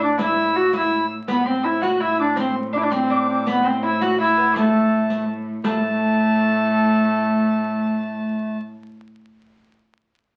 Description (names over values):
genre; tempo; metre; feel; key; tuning
medieval dance; 110 BPM (dotted quarters); 6/8; straight; A dorian; A4 = 439 Hz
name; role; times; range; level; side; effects
bass recorder; melody; 0.0-8.6 s; A3 to F#4; -21 LUFS; equal; none
clear fiddle; second line; 0.0-8.6 s; A5 to F#6; -29 LUFS; equal; none
lute; second line; 0.0-8.7 s; A3 to F#4; -30 LUFS; equal; none
warm viola da gamba; drone; 0.0-8.6 s; A2; -32 LUFS; equal; none
riq; percussion; 0.2-5.8 s; none; -32 LUFS; equal; none
room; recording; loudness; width
wet club reverb, RT60 0.5 s; very old 78 rpm record, vinyl crackle; -20 LUFS; mono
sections
0.0-5.6 A section; 5.6-7.8 B section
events
none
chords
none